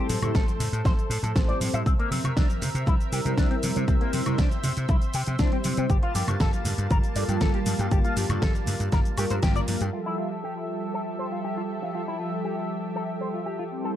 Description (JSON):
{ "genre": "nu-disco, nu disco", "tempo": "119 BPM", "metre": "4/4", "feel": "straight", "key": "F major", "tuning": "A4 = 439 Hz", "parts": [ { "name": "mellow synth brass", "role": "accompaniment", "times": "0.0-14.0 s", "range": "F3 to A5", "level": "-31 LUFS", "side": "equal", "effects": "chorus, sidechain pumping, digital delay" }, { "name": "lush unison pad", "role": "sustained chords", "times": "0.0-14.0 s", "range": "F3 to A5", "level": "-34 LUFS", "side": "equal", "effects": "chorus, sidechain pumping" }, { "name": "electric guitar with an envelope filter", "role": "riff", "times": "0.0-13.9 s", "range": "Bb3 to E5", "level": "-34 LUFS", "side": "left 3 dB", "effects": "analog chorus, low-pass filter, digital delay" }, { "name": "slap bass", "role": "bass", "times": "0.1-9.9 s", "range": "G1 to C3", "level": "-28 LUFS", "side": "equal", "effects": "sidechain pumping" }, { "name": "pop drum kit", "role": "drums", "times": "0.1-9.9 s", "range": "hi-hat, shaker, snare drum, woodblock", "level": "-33 LUFS", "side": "equal", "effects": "overdrive, low-pass filter on hats, low-pass filter on perc, low-pass filter on snare, low-pass filter on room" }, { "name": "congas", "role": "percussion", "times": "0.1-9.8 s", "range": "none", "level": "-35 LUFS", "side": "right 1 dB", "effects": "none" }, { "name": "electronic kick drum", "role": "drums", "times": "0.3-9.5 s", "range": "none", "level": "-24 LUFS", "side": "equal", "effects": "overdrive" } ], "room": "little or no reverb", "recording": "dark, warm production", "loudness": "-23 LUFS", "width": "side -11 dB against mid", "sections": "0.0-9.9 A section; 9.9-14.0 B section", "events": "band accent 9.4", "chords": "0.0 Am7; 1.9 C7; 5.9 Gm9; 9.9 Fmaj9", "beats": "0.35 0.85 1.36 | 1.86 2.37 2.87 3.38 | 3.88 4.38 4.89 5.39 | 5.90 6.40 6.91 7.41 | 7.91 8.42 8.92 9.43 | 9.93 10.44 10.94 11.44 | 11.95 12.45 12.96 13.46" }